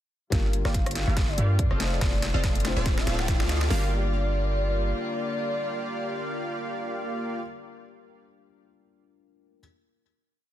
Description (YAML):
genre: future bass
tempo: 142 BPM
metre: 4/4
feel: swing 56% on 16ths, half-time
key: G minor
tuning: A4 = 437 Hz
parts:
  - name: warm velvety synth lead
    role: melody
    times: 0.3-7.4 s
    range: C5 to G5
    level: -35 LUFS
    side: equal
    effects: chorus, sidechain pumping, ping-pong delay
  - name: felt-muted upright piano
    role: accompaniment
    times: 0.3-9.6 s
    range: G3 to C5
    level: -38 LUFS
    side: left 5 dB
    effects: sidechain pumping, ping-pong delay
  - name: warm chamber string section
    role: sustained chords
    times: 0.3-7.4 s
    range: D3 to F4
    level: -39 LUFS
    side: left 2 dB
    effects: sidechain pumping, low-pass filter
  - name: supersaw stab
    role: riff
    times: 0.3-7.4 s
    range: Bb3 to F5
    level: -32 LUFS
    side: equal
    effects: sidechain pumping, low-pass filter, ping-pong delay
  - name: warm 808-style bass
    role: bass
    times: 0.3-4.9 s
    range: D1 to G2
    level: -26 LUFS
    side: equal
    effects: sidechain pumping
  - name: dubstep drum kit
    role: drums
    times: 0.3-3.8 s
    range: hi-hat, kick drum, snare drum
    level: -26 LUFS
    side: equal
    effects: none
  - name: pop drum kit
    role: drums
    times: 0.3-3.7 s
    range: hi-hat, rim click, snare drum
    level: -32 LUFS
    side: equal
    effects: overdrive, high-pass filter on snare, high-pass filter on hats, high-pass filter on room
  - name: riser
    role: sound effects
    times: 2.2-3.7 s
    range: none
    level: -40 LUFS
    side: left 1 dB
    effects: none
room: digital ambience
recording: dense, heavily limited modern master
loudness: -24 LUFS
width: side -12 dB against mid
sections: 0.3-3.7 build; 3.7-7.1 final chord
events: build-up 0.3-3.7; drum fill 0.3-3.7; filter sweep on supersaw synth 0.3-3.7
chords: 0.3 Gm7; 1.8 F7; 2.6 Dm7; 3.7 Gm7